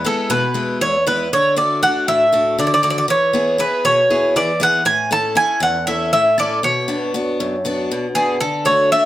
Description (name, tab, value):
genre	greek folk, Greek bouzouki band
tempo	237 BPM (eighths)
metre	7/8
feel	straight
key	unclear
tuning	A4 = 440 Hz
part	Greek bouzouki	melody	0.0-9.1 s	G#4 to A5	-16 LUFS	right 1 dB	plate reverb
part	picked steel-string acoustic guitar	accompaniment	0.0-9.1 s	E2 to A4	-21 LUFS	left 2 dB	none
room	moderate studio reverb, RT60 0.6 s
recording	none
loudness	-15 LUFS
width	side -13 dB against mid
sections	0.0-9.1 A section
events	none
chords	0.0 E; 1.3 D; 3.1 E; 4.9 A; 6.6 Bm; 8.4 D